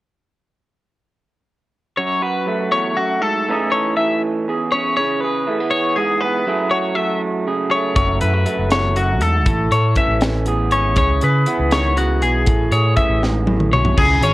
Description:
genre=math rock and midwest emo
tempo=80 BPM (dotted quarters)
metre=6/8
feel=straight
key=A lydian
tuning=A4 = 440 Hz
part: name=electric guitar through a small old amp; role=accompaniment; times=2.0-14.3 s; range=E2 to A4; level=-20 LUFS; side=right 3 dB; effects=spring reverb, plate reverb
part: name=twelve-string electric guitar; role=arpeggios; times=2.0-14.3 s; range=F#4 to E5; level=-19 LUFS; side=left 3 dB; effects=none
part: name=overdriven fingered electric bass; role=bass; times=8.0-14.3 s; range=F#1 to C#3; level=-18 LUFS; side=equal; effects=none
part: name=crisp fusion drum kit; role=drums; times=8.0-14.3 s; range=crash cymbal, hi-hat, kick drum, snare drum, toms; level=-20 LUFS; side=equal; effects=none
room=light reverb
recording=worn, warbling old tape, cassette tape, warbly pitch drift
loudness=-15 LUFS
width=side -17 dB against mid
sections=2.0-14.0 A section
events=drum fill 13.2-14.0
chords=2.0 F#m11; 3.5 Amaj7#11; 5.0 C#m7; 6.5 F#m11; 9.5 Amaj7; 11.0 C#m7; 12.5 Amaj9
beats=| 1.97 2.72 | 3.46 4.21 | 4.96 5.71 | 6.46 7.21 | 7.96 8.71 | 9.46 10.21 | 10.97 11.72 | 12.47 13.22 | 13.97

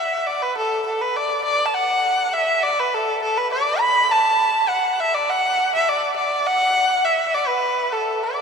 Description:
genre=chinese traditional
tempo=101 BPM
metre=2/4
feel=rubato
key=D gong mode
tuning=A4 = 440 Hz
part: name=clear erhu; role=solo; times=0.0-8.4 s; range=A4 to B5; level=-18 LUFS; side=equal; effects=none
room=wet cathedral reverb, RT60 5.4 s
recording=in a vast, echoing space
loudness=-17 LUFS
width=side -5 dB against mid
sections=0.0-8.4 A section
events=none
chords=none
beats=| 0.55 1.14 | 1.72 2.31 | 2.90 3.50 | 4.09 4.69 | 5.28 5.88 | 6.47 7.05 | 7.64 8.23

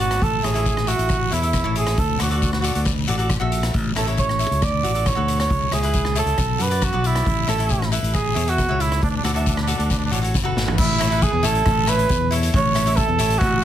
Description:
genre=calypso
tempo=136 BPM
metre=4/4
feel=straight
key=A major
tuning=A4 = 439 Hz
part: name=mellow cor anglais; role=melody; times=0.0-13.6 s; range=D4 to D5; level=-22 LUFS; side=right 4 dB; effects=none
part: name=cavaquinho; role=accompaniment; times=0.0-13.5 s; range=E4 to E5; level=-28 LUFS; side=left 2 dB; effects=none
part: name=modern bright fingered electric bass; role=bass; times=0.0-13.6 s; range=G#1 to F#2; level=-22 LUFS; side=equal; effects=none
part: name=street-band drum kit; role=drums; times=0.1-13.5 s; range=crash cymbal, hi-hat, kick drum, rim click, snare drum, toms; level=-23 LUFS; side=left 1 dB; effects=none
part: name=guiro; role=percussion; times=0.2-13.6 s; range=none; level=-33 LUFS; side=left 8 dB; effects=none
room=light reverb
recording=heavily compressed radio sound, multiband compression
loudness=-18 LUFS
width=side -11 dB against mid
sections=0.0-10.8 A section; 10.8-13.6 B section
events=drum fill 10.6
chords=0.2 A; 2.0 D; 3.7 A; 4.6 D; 5.5 C#m; 6.4 Bm; 7.3 A; 9.0 D; 10.8 A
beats=| 0.22 0.66 1.10 1.54 | 1.98 2.42 2.86 3.30 | 3.74 4.18 4.62 5.06 | 5.50 5.94 6.38 6.82 | 7.26 7.70 8.14 8.58 | 9.02 9.46 9.90 10.34 | 10.78 11.21 11.65 12.09 | 12.53 12.96 13.40

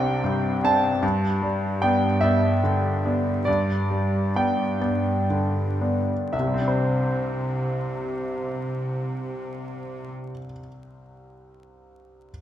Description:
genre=cinematic, emotional film score for orchestra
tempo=38-51 BPM (dotted quarters)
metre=6/8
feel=rubato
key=C major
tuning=A4 = 437 Hz
part: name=bright grand piano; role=accompaniment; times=0.0-12.3 s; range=C2 to A5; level=-24 LUFS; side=equal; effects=none
part: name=rich studio cello section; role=bass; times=0.0-10.1 s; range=G2 to C3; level=-26 LUFS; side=equal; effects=none
room=wet recital hall reverb, RT60 1.5 s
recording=minimal, uncompressed stereo recording, vinyl crackle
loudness=-21 LUFS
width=side -11 dB against mid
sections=0.0-6.3 A section; 6.3-9.3 B section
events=slowing down 0.0-6.3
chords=0.0 Csus2; 1.0 G6; 6.3 Cadd9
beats=| 1.03 2.22 | 3.47 4.82 | 6.33 7.83

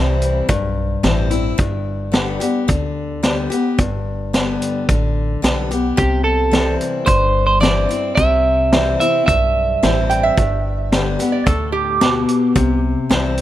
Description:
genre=honky-tonk and classic country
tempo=109 BPM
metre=4/4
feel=straight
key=C major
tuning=A4 = 440 Hz
part: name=picked steel-string acoustic guitar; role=accompaniment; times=0.0-13.4 s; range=G2 to G4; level=-20 LUFS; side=left 4 dB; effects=none
part: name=upright bass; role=bass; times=0.0-13.4 s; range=G1 to D2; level=-21 LUFS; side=equal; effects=none
part: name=vintage drum kit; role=drums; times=0.2-13.4 s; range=hi-hat, kick drum, snare drum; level=-19 LUFS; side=equal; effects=none
part: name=electric guitar at the edge of break-up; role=melody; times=6.0-10.0 s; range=G4 to E5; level=-18 LUFS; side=right 2 dB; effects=none
part: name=lap resonator guitar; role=second line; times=10.1-12.8 s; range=G4 to G5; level=-20 LUFS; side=right 5 dB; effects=none
room=light reverb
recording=none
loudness=-15 LUFS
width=side -13 dB against mid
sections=0.0-13.4 A section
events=none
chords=0.0 C; 1.6 G; 6.0 C; 10.4 G; 12.6 C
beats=0.49 1.04 | 1.59 2.14 2.68 3.23 | 3.78 4.33 4.88 5.43 | 5.97 6.52 7.07 7.62 | 8.17 8.71 9.26 9.81 | 10.36 10.91 11.46 12.00 | 12.55 13.10

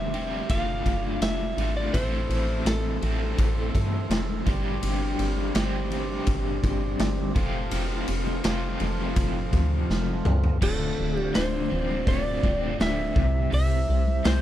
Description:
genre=psychedelic rock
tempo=83 BPM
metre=4/4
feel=straight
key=D minor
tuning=A4 = 440 Hz
part: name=electric slide guitar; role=melody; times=0.0-3.7, 10.6-14.4 s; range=A4 to F5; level=-31 LUFS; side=equal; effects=tape echo
part: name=percussive tonewheel organ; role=sustained chords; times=0.0-14.4 s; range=G3 to F5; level=-37 LUFS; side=right 7 dB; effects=slow rotary speaker
part: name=overdriven electric guitar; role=riff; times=0.0-14.4 s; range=D2 to A4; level=-30 LUFS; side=left 2 dB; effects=tremolo
part: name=woody FM bass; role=bass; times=0.0-14.4 s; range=D1 to G2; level=-27 LUFS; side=equal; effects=none
part: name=raw garage drum kit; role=drums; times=0.1-14.4 s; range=crash cymbal, hi-hat, kick drum, ride cymbal, snare drum, toms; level=-28 LUFS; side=equal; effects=none
part: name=congas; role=percussion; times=0.1-14.2 s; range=none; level=-37 LUFS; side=left 2 dB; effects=none
room=small room ambience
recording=none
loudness=-23 LUFS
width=side -12 dB against mid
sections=0.0-10.6 A section; 10.6-14.4 B section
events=drum fill 9.9-10.6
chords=0.0 Gsus4; 0.5 Dm/F; 1.9 Am; 4.5 Gsus4; 7.4 F; 10.6 Dm7; 13.2 C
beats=0.51 1.23 | 1.95 2.67 3.39 4.11 | 4.83 5.55 6.28 7.00 | 7.72 8.45 9.17 9.90 | 10.62 11.35 12.08 12.80 | 13.53 14.26

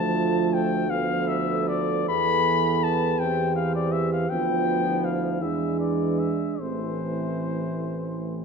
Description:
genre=classical, hymn-like piece for brass band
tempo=48-56 BPM (dotted quarters)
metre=6/8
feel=rubato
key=A minor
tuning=A4 = 440 Hz
part: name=mellow cornet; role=melody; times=0.0-8.4 s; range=C5 to B5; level=-27 LUFS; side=left 7 dB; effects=none
part: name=dark French horn section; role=second line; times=0.0-8.4 s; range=C4 to A4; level=-29 LUFS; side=right 9 dB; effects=none
part: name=clear euphonium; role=accompaniment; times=0.0-8.4 s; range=E3 to F3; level=-29 LUFS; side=right 2 dB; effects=none
part: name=warm trombone section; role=accompaniment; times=0.0-8.4 s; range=G#3 to C4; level=-32 LUFS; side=left 1 dB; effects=none
part: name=warm tuba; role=bass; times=0.0-8.4 s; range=A1 to E2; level=-30 LUFS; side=equal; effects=none
room=wet recital hall reverb, RT60 1.7 s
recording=dark, warm production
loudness=-22 LUFS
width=side -5 dB against mid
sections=0.0-8.4 A section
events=none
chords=0.0 Dm; 0.9 Bdim/D; 2.1 E5; 3.2 C/E; 4.3 Bdim/D; 5.4 E7; 6.6 Am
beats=0.89 | 2.09 3.20 | 4.30 5.42 | 6.60 7.85

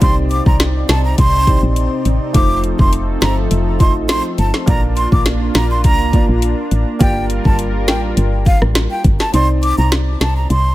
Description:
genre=dancehall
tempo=103 BPM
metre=4/4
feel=straight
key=C dorian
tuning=A4 = 442 Hz
part: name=breathy jazz flute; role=melody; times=0.0-10.7 s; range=F5 to D6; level=-20 LUFS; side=right 1 dB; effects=ping-pong delay
part: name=warm grand piano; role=accompaniment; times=0.0-10.7 s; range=A3 to Eb5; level=-23 LUFS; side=right 2 dB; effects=none
part: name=warm analog pad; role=sustained chords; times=0.0-9.3 s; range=C3 to D5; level=-23 LUFS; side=left 1 dB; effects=chorus, sidechain pumping
part: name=woody FM bass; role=bass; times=0.0-10.7 s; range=F1 to C2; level=-16 LUFS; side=equal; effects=none
part: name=afro-pop drum kit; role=drums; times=0.0-10.6 s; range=hi-hat, kick drum, rim click, snare drum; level=-15 LUFS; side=equal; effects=none
room=digital ambience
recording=none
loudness=-12 LUFS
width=side -16 dB against mid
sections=0.0-9.3 A section; 9.3-10.7 B section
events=kick muted 9.3-10.7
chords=0.0 Cmadd9; 2.3 F7; 4.7 Bb; 7.0 Gm7; 9.3 Cmadd9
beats=| 0.02 0.60 1.18 1.76 | 2.35 2.93 3.51 4.09 | 4.68 5.26 5.84 6.42 | 7.01 7.59 8.17 8.75 | 9.34 9.92 10.50

